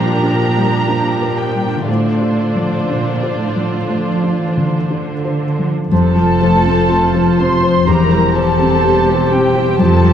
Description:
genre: cinematic, emotional film score for orchestra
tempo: 61 BPM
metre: 4/4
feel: rubato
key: D minor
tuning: A4 = 442 Hz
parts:
  - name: muted studio violin section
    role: melody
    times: 0.0-10.1 s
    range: D5 to C6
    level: -23 LUFS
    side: equal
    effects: none
  - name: muted studio violin section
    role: second line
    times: 0.0-10.1 s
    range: F4 to C5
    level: -22 LUFS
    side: left 2 dB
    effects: none
  - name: felt-muted upright piano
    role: accompaniment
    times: 0.0-10.1 s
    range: E2 to C5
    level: -18 LUFS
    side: left 2 dB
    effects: none
  - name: muted studio viola section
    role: accompaniment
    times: 0.0-10.1 s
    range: C3 to G4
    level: -22 LUFS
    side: right 1 dB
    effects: none
  - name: concert harp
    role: arpeggios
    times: 0.0-10.1 s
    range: E2 to C5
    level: -22 LUFS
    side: left 8 dB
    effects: none
  - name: muted studio cello section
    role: bass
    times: 0.0-10.1 s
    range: E2 to F3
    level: -19 LUFS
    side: right 3 dB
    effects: none
  - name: mellow cor anglais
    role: second line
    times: 5.9-10.1 s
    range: C5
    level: -22 LUFS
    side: right 2 dB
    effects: none
  - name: mellow flute section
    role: second line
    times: 5.9-10.1 s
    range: G5 to C6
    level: -21 LUFS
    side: right 2 dB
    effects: none
  - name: warm clarinet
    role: second line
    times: 5.9-10.1 s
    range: F4 to G4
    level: -21 LUFS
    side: left 2 dB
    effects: none
  - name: muted studio double bass section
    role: bass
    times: 5.9-10.1 s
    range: E1 to F1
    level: -21 LUFS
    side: right 4 dB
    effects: none
room: wet scoring stage reverb, RT60 2.0 s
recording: dark, warm production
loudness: -12 LUFS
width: side -9 dB against mid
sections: 0.0-5.9 A section; 5.9-10.1 B section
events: none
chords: 0.0 Bb6; 1.9 Dm7/A; 5.9 F; 7.9 C/E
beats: 0.88 | 1.88 2.89 3.89 4.90 | 5.91 6.90 7.87 8.84 | 9.80

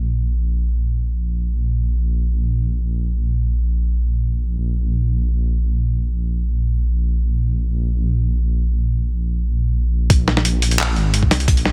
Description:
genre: half-time drum and bass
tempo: free time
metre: none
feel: none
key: unclear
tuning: A4 = 440 Hz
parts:
  - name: dark detuned saw bass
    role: bass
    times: 0.0-11.7 s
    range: Ab1 to C2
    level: -20 LUFS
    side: equal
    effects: none
  - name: boom bap sampler-style drum kit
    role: drums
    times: 10.1-11.7 s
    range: handclaps, hi-hat, snare drum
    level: -21 LUFS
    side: equal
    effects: low-pass filter on hats, soft clipping on snare, low-pass filter on snare
  - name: electronic kick drum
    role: drums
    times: 10.1-11.6 s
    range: none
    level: -18 LUFS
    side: equal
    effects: none
room: little or no reverb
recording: dense, heavily limited modern master, low-pass filter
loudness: -20 LUFS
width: mono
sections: 0.0-10.1 A section; 10.1-11.7 B section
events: filter sweep 0.0-10.1; drop 10.1-11.7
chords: none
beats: free time

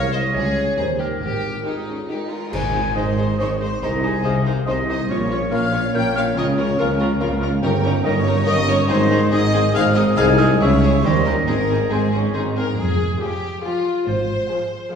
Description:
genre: cinematic, playful, whimsical film cue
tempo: 140 BPM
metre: 3/4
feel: straight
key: Ab major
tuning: A4 = 441 Hz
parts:
  - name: rich chamber violin section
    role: melody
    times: 0.0-14.9 s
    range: Eb4 to Db5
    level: -29 LUFS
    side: left 4 dB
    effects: none
  - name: mellow clarinet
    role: second line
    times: 0.0-14.9 s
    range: F4 to Ab5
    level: -26 LUFS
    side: equal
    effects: none
  - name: rich chamber violin section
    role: second line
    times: 0.0-15.0 s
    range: C4 to Ab5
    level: -27 LUFS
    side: left 1 dB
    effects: none
  - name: rich chamber viola section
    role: accompaniment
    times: 0.0-15.0 s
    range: Eb3 to Ab4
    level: -27 LUFS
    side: equal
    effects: none
  - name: mellow tuba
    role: bass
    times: 0.0-12.7 s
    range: G1 to Eb2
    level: -24 LUFS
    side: right 2 dB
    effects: none
  - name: rich chamber double bass section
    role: bass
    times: 0.0-14.4 s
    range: F1 to Eb2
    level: -25 LUFS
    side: right 1 dB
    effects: none
  - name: warm studio cello section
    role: bass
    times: 0.0-14.4 s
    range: C2 to Eb3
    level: -24 LUFS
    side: right 1 dB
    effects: none
  - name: silver concert flute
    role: second line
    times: 2.1-12.3 s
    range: G5 to G6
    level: -27 LUFS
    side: left 2 dB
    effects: none
  - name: clash cymbals and concert bass drum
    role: percussion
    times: 2.5-3.4 s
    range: none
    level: -33 LUFS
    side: equal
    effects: none
  - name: warm oboe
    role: second line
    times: 3.0-12.5 s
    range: C5 to F5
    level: -33 LUFS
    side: equal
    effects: none
  - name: mellow bassoon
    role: accompaniment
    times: 3.0-12.5 s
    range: G3 to C4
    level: -28 LUFS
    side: left 1 dB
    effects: none
  - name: warm French horn section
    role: sustained chords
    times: 3.0-12.6 s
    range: Eb3 to Fb4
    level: -26 LUFS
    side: left 4 dB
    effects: none
room: wet scoring stage reverb, RT60 1.6 s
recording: heard from further back in the room, studio reverb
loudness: -17 LUFS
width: side -7 dB against mid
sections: 0.0-2.5 A section; 2.5-12.8 B section; 12.8-15.0 C section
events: band accent 2.5-3.0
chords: 0.4 Dbm; 0.8 Eb7; 1.2 Ab5; 2.5 Ab; 3.8 Ab/C; 5.1 Bbm; 6.4 Bbm/Db; 7.6 Eb7/G; 8.9 Ab; 10.2 Ab/C; 10.6 Dbm; 11.0 Eb7; 11.5 Ab; 12.8 Fm; 14.1 Fm/Ab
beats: 0.36 0.79 | 1.22 1.66 2.09 | 2.53 2.96 3.39 | 3.82 4.24 4.67 | 5.09 5.52 5.94 | 6.37 6.79 7.21 | 7.63 8.05 8.47 | 8.90 9.32 9.75 | 10.18 10.60 11.04 | 11.47 11.91 12.35 | 12.78 13.21 13.64 | 14.08 14.51 14.93

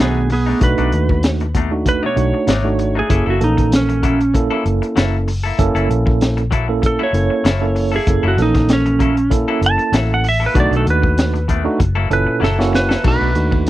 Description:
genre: straight-eighth soul blues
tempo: 96 BPM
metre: 4/4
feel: swing 54% on 16ths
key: B mixolydian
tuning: A4 = 441 Hz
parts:
  - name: clean lap steel guitar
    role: melody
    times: 0.0-13.7 s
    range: B3 to A5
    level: -19 LUFS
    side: right 2 dB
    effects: none
  - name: tine electric piano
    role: accompaniment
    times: 0.0-13.7 s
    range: A#2 to A4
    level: -20 LUFS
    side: right 4 dB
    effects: medium stereo tremolo
  - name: semi-hollow electric guitar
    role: stabs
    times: 0.0-13.6 s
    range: B2 to A4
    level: -24 LUFS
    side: left 6 dB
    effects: none
  - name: vintage muted fingered electric bass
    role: bass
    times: 0.0-13.7 s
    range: F#1 to D#2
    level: -18 LUFS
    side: left 1 dB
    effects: none
  - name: crunchy breakbeat drum kit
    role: drums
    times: 0.0-13.7 s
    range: crash cymbal, hi-hat, kick drum, snare drum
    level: -18 LUFS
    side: left 1 dB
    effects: none
room: little or no reverb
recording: dry, close 1970s-style studio recording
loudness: -13 LUFS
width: side -15 dB against mid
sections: 0.0-13.0 A section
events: electric slide guitar solo 0.0-13.0; drum fill 12.4-13.0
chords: 0.0 B7#9; 3.1 F#7#9; 10.6 B7#9; 11.8 F#7#9; 13.0 B7#9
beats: | 0.61 1.23 1.85 2.48 | 3.10 3.72 4.34 4.96 | 5.58 6.21 6.83 7.45 | 8.07 8.69 9.31 9.93 | 10.55 11.18 11.80 12.42 | 13.04 13.66

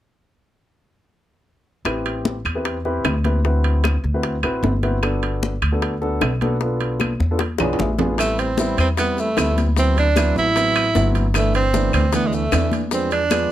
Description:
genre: Afro-Cuban jazz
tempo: 152 BPM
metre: 4/4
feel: straight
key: A minor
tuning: A4 = 440 Hz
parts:
  - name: upright bass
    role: bass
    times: 1.8-13.4 s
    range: G1 to E2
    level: -21 LUFS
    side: equal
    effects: none
  - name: dark baby grand piano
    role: accompaniment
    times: 1.9-13.5 s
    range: E3 to G#5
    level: -24 LUFS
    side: equal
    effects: none
  - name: bongos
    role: percussion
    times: 1.9-13.5 s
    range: none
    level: -27 LUFS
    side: left 8 dB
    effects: none
  - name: claves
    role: percussion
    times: 1.9-13.5 s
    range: none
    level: -29 LUFS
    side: left 4 dB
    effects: none
  - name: congas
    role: percussion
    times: 1.9-13.5 s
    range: none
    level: -27 LUFS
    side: left 2 dB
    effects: none
  - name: timbales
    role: percussion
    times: 1.9-13.5 s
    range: none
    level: -27 LUFS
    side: right 7 dB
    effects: none
  - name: clear tenor saxophone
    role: melody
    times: 8.2-13.5 s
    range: G#3 to E4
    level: -20 LUFS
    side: right 3 dB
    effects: none
  - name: maracas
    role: percussion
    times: 8.2-13.5 s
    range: none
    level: -34 LUFS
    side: left 6 dB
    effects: none
room: little or no reverb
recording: close, detailed microphones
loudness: -17 LUFS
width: side -12 dB against mid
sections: 1.9-8.2 A section; 8.2-13.5 B section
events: drum fill 7.0-8.2; grand piano fill 7.4-8.2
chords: 1.9 Am9; 3.4 D13; 5.0 Gmaj9; 6.6 Bm7b5; 7.4 E7b9; 8.2 Am7; 9.8 D13; 11.3 G69; 12.9 E7b9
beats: | 1.86 2.25 2.65 3.05 | 3.44 3.84 4.24 4.63 | 5.03 5.42 5.82 6.22 | 6.61 7.01 7.40 7.80 | 8.20 8.59 8.98 9.38 | 9.77 10.17 10.56 10.96 | 11.35 11.74 12.14 12.53 | 12.92 13.32

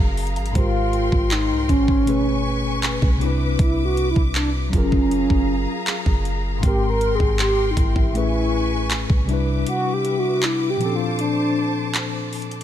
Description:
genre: contemporary R&B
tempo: 79 BPM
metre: 4/4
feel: straight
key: unclear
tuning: A4 = 440 Hz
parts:
  - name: mellow horn-like synth lead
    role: melody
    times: 0.0-12.0 s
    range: Db4 to Bb4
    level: -23 LUFS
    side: equal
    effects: chorus, ping-pong delay
  - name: mellow tine electric piano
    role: accompaniment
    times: 0.0-12.6 s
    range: Ab2 to F5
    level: -25 LUFS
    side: left 2 dB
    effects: medium stereo tremolo
  - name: warm studio string section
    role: sustained chords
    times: 0.0-12.6 s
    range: Ab4 to D6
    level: -29 LUFS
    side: left 1 dB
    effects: none
  - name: warm 808-style bass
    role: bass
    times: 0.0-9.6 s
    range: Gb1 to C2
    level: -23 LUFS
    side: equal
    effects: none
  - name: trap drum kit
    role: drums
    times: 0.2-12.6 s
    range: handclaps, hi-hat, kick drum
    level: -22 LUFS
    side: equal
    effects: none
room: little or no reverb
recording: none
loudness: -18 LUFS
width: side -11 dB against mid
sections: 0.0-12.6 A section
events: break 9.7-12.6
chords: 0.0 Gbmaj9; 0.6 Abmaj9; 2.1 Amaj9; 3.2 Cmaj9; 4.7 Gbmaj9; 6.6 Abmaj9; 8.1 Amaj9; 9.3 Cmaj9; 10.8 Bbmaj9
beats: | 0.55 1.31 2.07 2.83 | 3.59 4.35 5.11 5.87 | 6.63 7.39 8.15 8.91 | 9.67 10.43 11.19 11.95

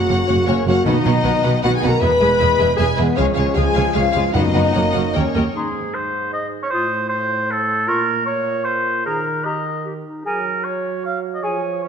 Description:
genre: cinematic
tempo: 154 BPM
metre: 3/4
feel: straight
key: B major, Ab major from 5.5 s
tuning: A4 = 437 Hz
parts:
  - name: warm symphonic violin section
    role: melody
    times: 0.0-5.6 s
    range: B4 to B5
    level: -24 LUFS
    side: left 5 dB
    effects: none
  - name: clear trombone section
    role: sustained chords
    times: 0.0-11.9 s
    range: Ab2 to B3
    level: -26 LUFS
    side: right 4 dB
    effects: none
  - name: mellow French horn section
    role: sustained chords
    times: 0.0-5.6 s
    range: B3 to B4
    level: -19 LUFS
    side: left 3 dB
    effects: none
  - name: timpani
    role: percussion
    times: 0.0-1.4, 4.3-4.7 s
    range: F#2 to B2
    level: -26 LUFS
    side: equal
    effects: none
  - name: warm symphonic violin section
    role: second line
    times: 0.1-5.4 s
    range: B4 to G5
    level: -27 LUFS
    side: left 2 dB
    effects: none
  - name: rich symphonic viola section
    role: accompaniment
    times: 0.1-5.4 s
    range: G#3 to A#4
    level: -25 LUFS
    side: equal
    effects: none
  - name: rich symphonic cello section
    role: bass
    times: 0.1-5.4 s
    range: C#2 to B2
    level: -23 LUFS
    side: right 2 dB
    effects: none
  - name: warm symphonic double bass section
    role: bass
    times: 0.1-5.4 s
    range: E1 to D#2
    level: -23 LUFS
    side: right 3 dB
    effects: none
  - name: mellow hollow silver concert flute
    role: second line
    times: 5.6-11.6 s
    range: Ab5 to Eb6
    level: -29 LUFS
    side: left 2 dB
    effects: none
  - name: mellow oboe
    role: second line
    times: 5.6-11.9 s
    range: Ab4 to F5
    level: -21 LUFS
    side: right 1 dB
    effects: none
  - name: warm clarinet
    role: second line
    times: 5.6-11.6 s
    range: Eb4 to Ab4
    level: -30 LUFS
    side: left 2 dB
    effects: none
room: wet scoring stage reverb, RT60 2.0 s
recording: none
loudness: -16 LUFS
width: side -7 dB against mid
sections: 0.0-5.5 A section; 5.5-11.9 B section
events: none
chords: 0.0 F#; 0.9 B; 2.0 E; 3.2 C#; 4.4 B/F#; 4.7 F#; 5.1 D#7; 5.5 Ab; 6.7 F/A (rootless); 7.9 Bbm; 9.1 Ebsus4; 10.3 Gbadd9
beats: 0.09 0.48 | 0.86 1.24 1.63 | 2.02 2.40 2.79 | 3.18 3.57 3.96 | 4.35 4.75 5.15 | 5.55 5.94 6.33 | 6.72 7.11 7.50 | 7.89 8.27 8.66 | 9.06 9.46 9.86 | 10.26 10.65 11.04 | 11.44 11.82

